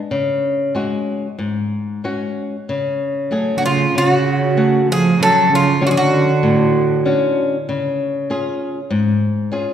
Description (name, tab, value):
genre	fado-style ballad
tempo	96 BPM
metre	4/4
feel	rubato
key	unclear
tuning	A4 = 442 Hz
part	flamenco guitar	accompaniment	0.1-9.7 s	G#2 to F#5	-19 LUFS	left 2 dB	none
part	Irish bouzouki	melody	3.6-7.3 s	E#4 to A4	-16 LUFS	right 2 dB	none
part	warm cello	second line	3.6-7.3 s	C#3 to F#3	-17 LUFS	right 3 dB	none
room	wet recital hall reverb, RT60 1.6 s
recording	recorded in a church or concert hall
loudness	-15 LUFS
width	side -9 dB against mid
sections	0.0-9.7 A section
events	none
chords	0.1 C#sus4; 2.7 F#madd9/C#; 5.2 Dmaj7; 7.7 C#